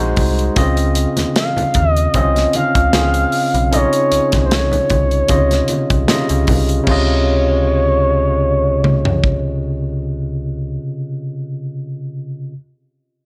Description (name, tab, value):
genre	lush 1970s-style soul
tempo	76 BPM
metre	4/4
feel	swing 54% on 16ths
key	Db major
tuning	A4 = 440 Hz
part	barky tine electric piano	accompaniment	0.0-12.5 s	C3 to Eb5	-22 LUFS	equal	overdrive
part	metallic FM bass	bass	0.0-10.8 s	Bb1 to Eb2	-21 LUFS	equal	none
part	modern studio drum kit	drums	0.2-9.4 s	crash cymbal, hi-hat, kick drum, snare drum, toms	-21 LUFS	equal	none
part	congas	percussion	0.2-7.2 s	none	-28 LUFS	equal	none
part	expressive synth lead	melody	1.4-10.8 s	C5 to F5	-20 LUFS	equal	chorus
room	studio ambience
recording	none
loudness	-16 LUFS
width	mono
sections	0.0-6.9 A section; 6.9-10.0 B section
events	none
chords	0.0 Ab7; 0.6 Dbmaj9